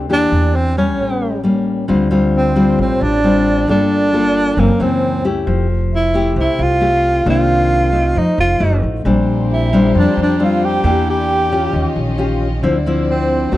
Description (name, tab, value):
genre	bossa nova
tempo	134 BPM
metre	4/4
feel	straight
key	D minor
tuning	A4 = 440 Hz
part	nylon-string guitar	accompaniment	0.0-13.6 s	F#2 to A4	-16 LUFS	left 2 dB	none
part	upright bass	bass	0.0-13.6 s	F1 to F2	-19 LUFS	right 1 dB	none
part	breathy tenor saxophone	melody	0.1-13.6 s	A#3 to G4	-17 LUFS	right 1 dB	none
part	mellow hollow jazz flute	second line	0.1-13.6 s	A#4 to G5	-26 LUFS	right 5 dB	none
part	warm studio violin section	sustained chords	9.0-13.6 s	A3 to Eb5	-27 LUFS	right 1 dB	none
room	small room ambience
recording	dry, close 1970s-style studio recording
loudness	-13 LUFS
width	side -15 dB against mid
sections	0.0-1.9 A section; 1.9-13.6 B section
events	none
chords	0.1 Em7b5; 1.0 A7b9; 1.9 Dm7; 3.7 Gm9; 4.6 F#7#11; 5.5 Fmaj9; 7.3 Cm9; 8.2 F7b9; 9.1 Bb69; 10.8 Em7b5; 11.7 Eb9; 12.6 Dm9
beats	| 0.10 0.55 0.99 1.44 | 1.89 2.34 2.79 3.23 | 3.68 4.13 4.58 5.02 | 5.47 5.92 6.37 6.81 | 7.26 7.71 8.16 8.60 | 9.05 9.50 9.95 10.39 | 10.84 11.29 11.73 12.18 | 12.63 13.08 13.52